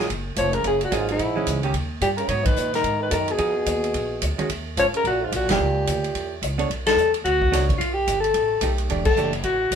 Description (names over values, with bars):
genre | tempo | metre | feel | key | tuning
jazz, small-group swing and bop | 218 BPM | 4/4 | swing 61% on 8ths | Eb minor, B minor from 6.7 s | A4 = 440 Hz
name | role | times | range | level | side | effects
hollow-body jazz guitar | accompaniment | 0.0-9.3 s | Eb3 to Db5 | -26 LUFS | right 4 dB | none
upright bass | bass | 0.0-9.8 s | E1 to Bb2 | -28 LUFS | equal | none
swinging big-band drum kit | drums | 0.1-9.8 s | crash cymbal, hi-hat, kick drum, ride cymbal, snare drum | -28 LUFS | equal | none
breathy alto saxophone | melody | 0.4-9.8 s | Fb4 to Db5 | -22 LUFS | left 2 dB | none
trombone with cup mute | second line | 0.4-6.4 s | Ab2 to Gb3 | -28 LUFS | right 2 dB | none
room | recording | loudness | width
wet studio reverb, RT60 0.6 s | band playing live in one room | -20 LUFS | side -7 dB against mid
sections
0.0-6.7 A section; 6.7-9.8 B section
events
band accent 2.4, 5.5, 6.8, 9.0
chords
0.1 Gbmaj9; 1.2 Bbm7b5; 1.7 Eb; 2.3 Abm7; 3.4 Fm7b5; 3.9 Bb7b9; 4.5 Ebmadd11; 5.6 Dbdim7; 6.7 Bm9; 7.8 Baug7; 8.9 Em11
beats
| 0.09 0.36 0.64 0.91 | 1.19 1.47 1.74 2.02 | 2.29 2.57 2.84 3.12 | 3.39 3.67 3.94 4.22 | 4.49 4.77 5.04 5.32 | 5.59 5.87 6.14 6.42 | 6.69 6.97 7.24 7.52 | 7.79 8.07 8.34 8.62 | 8.89 9.17 9.44 9.72